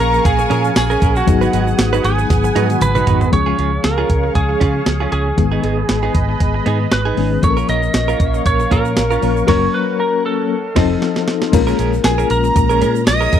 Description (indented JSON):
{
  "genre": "1980s-style pop",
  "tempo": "117 BPM",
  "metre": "4/4",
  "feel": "swing 55% on 16ths",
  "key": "G# dorian",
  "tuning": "A4 = 442 Hz",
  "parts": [
    { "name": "lightly driven lead guitar", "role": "melody", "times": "0.0-13.4 s", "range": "F#4 to D#5", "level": "-20 LUFS", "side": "right 1 dB", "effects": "slapback echo" },
    { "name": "warm studio violin section", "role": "second line", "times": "0.0-3.0, 12.0-13.4 s", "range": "F#5 to Eb6", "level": "-26 LUFS", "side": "right 2 dB", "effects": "slapback echo" },
    { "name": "FM electric piano with tremolo", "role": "accompaniment", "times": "0.0-13.4 s", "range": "D#3 to A#4", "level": "-20 LUFS", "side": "left 10 dB", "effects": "none" },
    { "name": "phased analog pad", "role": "sustained chords", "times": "0.0-11.5 s", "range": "G#4 to D#6", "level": "-25 LUFS", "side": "right 4 dB", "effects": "phaser, chorus" },
    { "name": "direct-recorded clean electric guitar", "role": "riff", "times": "0.0-13.4 s", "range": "B3 to B4", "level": "-22 LUFS", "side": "right 8 dB", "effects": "lush chorus, slapback echo" },
    { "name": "vintage muted fingered electric bass", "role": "bass", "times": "0.0-13.4 s", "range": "F1 to C#3", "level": "-19 LUFS", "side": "right 1 dB", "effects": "none" },
    { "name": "tube shaker", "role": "percussion", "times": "0.0-3.3, 7.4-13.4 s", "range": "none", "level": "-38 LUFS", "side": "right 22 dB", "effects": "none" },
    { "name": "clean 12-bit digital drum machine", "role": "drums", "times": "0.3-13.4 s", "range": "crash cymbal, hi-hat, kick drum, snare drum, tambourine, toms", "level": "-17 LUFS", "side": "right 1 dB", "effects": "none" },
    { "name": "mellow synth brass", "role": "stabs", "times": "2.7-3.3 s", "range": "D#3 to F#4", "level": "-23 LUFS", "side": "right 6 dB", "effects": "chorus" }
  ],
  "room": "little or no reverb",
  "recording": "dry, close 1970s-style studio recording",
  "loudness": "-13 LUFS",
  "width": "side -9 dB against mid",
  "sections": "0.0-3.3 A section; 3.3-11.5 B section; 11.5-13.4 A section",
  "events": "band accent 1.3-3.3, 9.5-11.5; drum fill 2.3-3.3, 10.5-11.5",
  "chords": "0.0 A#m7; 1.3 G#m7; 3.3 C#; 5.4 G#m; 7.4 A#m; 9.5 F#; 10.5 F7; 11.5 Bbm7"
}